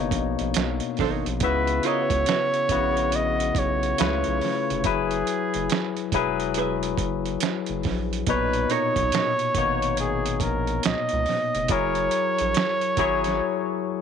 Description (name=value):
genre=R&B, neo-soul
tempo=70 BPM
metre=4/4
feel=swing 63% on 16ths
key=unclear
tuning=A4 = 440 Hz
part: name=barky tine electric piano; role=accompaniment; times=0.0-14.0 s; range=A#2 to F#5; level=-26 LUFS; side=left 11 dB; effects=none
part: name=round analog bass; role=bass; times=0.0-13.4 s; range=E1 to C#2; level=-30 LUFS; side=right 1 dB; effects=none
part: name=dusty soul sampler-style drum kit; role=drums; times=0.1-13.4 s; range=hi-hat, kick drum, snare drum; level=-28 LUFS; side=right 7 dB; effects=overdrive
part: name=archtop guitar, miked and amplified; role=second line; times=0.6-13.1 s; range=D#4 to E5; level=-30 LUFS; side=right 14 dB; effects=none
part: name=breathy flugelhorn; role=melody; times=1.4-14.0 s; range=G#4 to D#5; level=-25 LUFS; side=right 2 dB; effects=slapback echo
room=moderate spring reverb, RT60 2.3 s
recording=1960s-style stereo with parts hard left and right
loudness=-22 LUFS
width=side -7 dB against mid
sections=0.0-14.0 A section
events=break 13.4-14.0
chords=0.0 Bmaj9; 1.4 C#m7; 4.0 C#7alt; 4.8 F#9sus4; 8.3 Bmaj9; 11.7 F#9